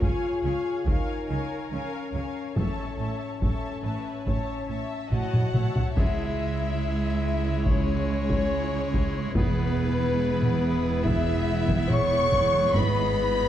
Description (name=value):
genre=cinematic, epic orchestral film score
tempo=71 BPM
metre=4/4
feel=straight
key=C# minor from 6.0 s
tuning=A4 = 441 Hz
part: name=warm symphonic violin section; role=melody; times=0.0-13.5 s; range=B4 to C#6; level=-36 LUFS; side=left 3 dB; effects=none
part: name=warm symphonic violin section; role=second line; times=0.0-13.5 s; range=G#4 to C#6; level=-35 LUFS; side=left 6 dB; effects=none
part: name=warm symphonic viola section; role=accompaniment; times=0.0-13.5 s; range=G#3 to E#5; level=-37 LUFS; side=equal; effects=none
part: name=dark French horn section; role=sustained chords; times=0.0-13.5 s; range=B3 to C#5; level=-30 LUFS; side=left 2 dB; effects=none
part: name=rich symphonic cello section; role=bass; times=0.0-13.5 s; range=C#2 to C#3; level=-32 LUFS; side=right 3 dB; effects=none
part: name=warm studio double bass section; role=bass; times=0.0-13.5 s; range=E1 to C#2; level=-30 LUFS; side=right 3 dB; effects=none
part: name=taiko ensemble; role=drums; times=0.0-13.5 s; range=none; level=-27 LUFS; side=equal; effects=none
part: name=pipe organ, clarinet reed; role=sustained chords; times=6.0-13.5 s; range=G#3 to D#5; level=-34 LUFS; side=equal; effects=none
room=moderate scoring stage reverb, RT60 2.0 s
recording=dark, warm production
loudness=-23 LUFS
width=side -11 dB against mid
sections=0.0-6.0 A section; 6.0-13.5 B section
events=drum fill 5.1-6.0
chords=0.0 C#; 2.6 A; 6.0 C#m; 9.4 E; 12.8 G#m